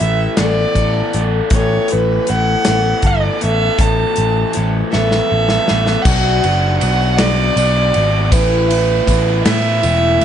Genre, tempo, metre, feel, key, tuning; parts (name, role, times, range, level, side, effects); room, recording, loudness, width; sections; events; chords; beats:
folk rock and heartland rock; 53 BPM (dotted quarters); 6/8; straight; A4 = 445 Hz
dark fiddle; melody; 0.0-10.2 s; B4 to A5; -18 LUFS; right 3 dB
picked twelve-string acoustic guitar; accompaniment; 0.0-10.2 s; A2 to A4; -21 LUFS; left 6 dB
raw garage guitar; riff; 0.0-10.2 s; A2 to A4; -21 LUFS; right 1 dB; overdrive
picked electric bass; bass; 0.0-10.2 s; E1 to A2; -17 LUFS; equal
natural country drum kit; drums; 0.0-10.2 s; crash cymbal, hi-hat, kick drum, ride cymbal, snare drum; -19 LUFS; equal
tambourine; percussion; 6.1-10.0 s; -33 LUFS; right 11 dB
light reverb; nothing above 10.3 kHz; -12 LUFS; side -9 dB against mid
0.0-6.1 A section; 6.1-10.2 B section
drum fill 4.9-6.1
0.0 Asus2; 6.1 Bm; 8.3 Asus2
0.39 | 1.52 2.66 | 3.79 4.93 | 6.07 7.20 | 8.33 9.46